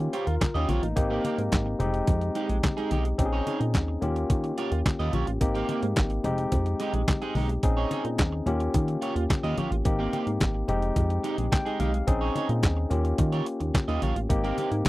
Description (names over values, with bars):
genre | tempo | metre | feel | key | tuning
early-eighties boogie funk | 108 BPM | 4/4 | straight | unclear | A4 = 441 Hz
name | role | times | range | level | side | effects
barky tine electric piano | accompaniment | 0.0-14.9 s | Ab3 to G5 | -29 LUFS | left 2 dB | none
electric guitar at the edge of break-up | riff | 0.0-14.9 s | Ab3 to Eb5 | -32 LUFS | right 5 dB | lush chorus
chorused synth bass | bass | 0.0-14.9 s | F1 to Eb3 | -27 LUFS | equal | none
crisp 8-bit digital drum machine | drums | 0.1-14.9 s | handclaps, hi-hat, kick drum, snare drum | -26 LUFS | equal | none
congas | percussion | 0.4-14.9 s | none | -34 LUFS | left 3 dB | none
room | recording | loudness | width
little or no reverb | dry, close 1970s-style studio recording | -24 LUFS | side -18 dB against mid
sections
0.0-14.9 A section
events
tine electric piano fill 11.2-12.1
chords
0.0 Eb9; 1.0 Abmaj9; 1.8 Fm9; 3.2 Bbm11; 4.0 Eb9; 5.4 Abmaj9; 6.2 Fm9; 7.6 Bbm11; 8.5 Eb9; 9.9 Abmaj9; 10.7 Fm9; 12.1 Bbm11; 12.9 Eb9; 14.3 Abmaj9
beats
0.41 | 0.96 1.52 2.08 2.63 | 3.19 3.74 4.30 4.85 | 5.41 5.96 6.52 7.08 | 7.63 8.19 8.74 9.30 | 9.85 10.41 10.96 11.52 | 12.08 12.63 13.19 13.74 | 14.30 14.85